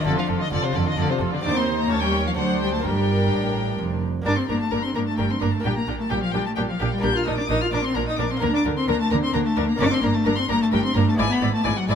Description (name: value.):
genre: classical, baroque-style concerto movement with solo episodes.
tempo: 130 BPM.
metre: 3/4.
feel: straight.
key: G minor.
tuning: A4 = 443 Hz.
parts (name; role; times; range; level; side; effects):
dark cello; melody; 0.0-11.9 s; C3 to G4; -24 LUFS; left 2 dB; none.
rich chamber violin section; melody; 0.0-11.9 s; C5 to G6; -28 LUFS; left 4 dB; none.
warm chamber violin section; second line; 0.0-11.9 s; F4 to D5; -29 LUFS; left 2 dB; none.
lute; accompaniment; 0.0-11.9 s; D2 to D5; -32 LUFS; right 1 dB; none.
warm chamber viola section; accompaniment; 0.0-11.9 s; Db4 to F4; -32 LUFS; equal; none.
rich studio double bass section; bass; 0.0-11.9 s; F1 to Eb2; -29 LUFS; right 4 dB; none.
dark chamber cello section; bass; 0.1-11.9 s; D2 to D3; -28 LUFS; right 4 dB; none.
room: light reverb.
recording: close, detailed microphones.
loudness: -20 LUFS.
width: side -8 dB against mid.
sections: 0.0-4.3 A section; 4.3-11.9 A section.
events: none.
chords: 0.1 Dm/F; 1.4 Cm/Eb; 1.9 Eb7; 2.4 D7; 2.8 Gm; 5.6 Gm/Bb; 7.0 Bb; 8.4 Bb/D; 9.8 Gm; 11.2 E7/G#.